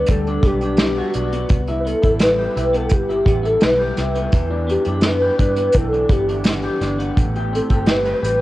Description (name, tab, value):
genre	indie pop, bedroom pop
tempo	85 BPM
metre	4/4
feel	straight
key	unclear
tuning	A4 = 440 Hz
part	warbly nostalgic lead	melody	0.0-8.4 s	G4 to B4	-20 LUFS	left 1 dB	ensemble chorus, cassette tape
part	electric guitar through a small old amp	accompaniment	0.0-8.4 s	A2 to B4	-23 LUFS	equal	wide subtle chorus, vibrato effect, cassette tape
part	vintage muted picked electric bass	bass	0.1-8.4 s	G1 to G2	-24 LUFS	equal	none
part	unplugged drum kit	drums	0.1-8.4 s	hi-hat, kick drum, snare drum	-19 LUFS	equal	cassette tape
room	light reverb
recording	home recording on cassette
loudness	-16 LUFS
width	side -16 dB against mid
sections	0.0-8.4 A section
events	none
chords	0.0 Gmaj7; 1.5 Cmaj7; 4.3 Em7; 7.2 Am9